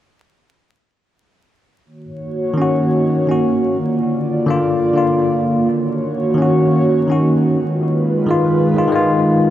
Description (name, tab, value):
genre	future garage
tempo	126 BPM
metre	4/4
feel	swing 65% on 16ths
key	Eb minor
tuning	A4 = 438 Hz
part	airy breathy pad	sustained chords	1.9-9.5 s	D3 to D5	-17 LUFS	right 1 dB	chorus, vintage 12-bit sampler grit
part	bell-like tine electric piano	accompaniment	2.5-9.5 s	D3 to Gb4	-16 LUFS	left 1 dB	medium stereo tremolo, analog delay
room	moderate huge ambient reverb, RT60 6.4 s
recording	vinyl crackle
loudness	-14 LUFS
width	side -12 dB against mid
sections	1.9-9.5 A section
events	none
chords	1.9 Ebm7; 3.8 Bb/D; 5.7 Ebm7; 7.6 Fm7b5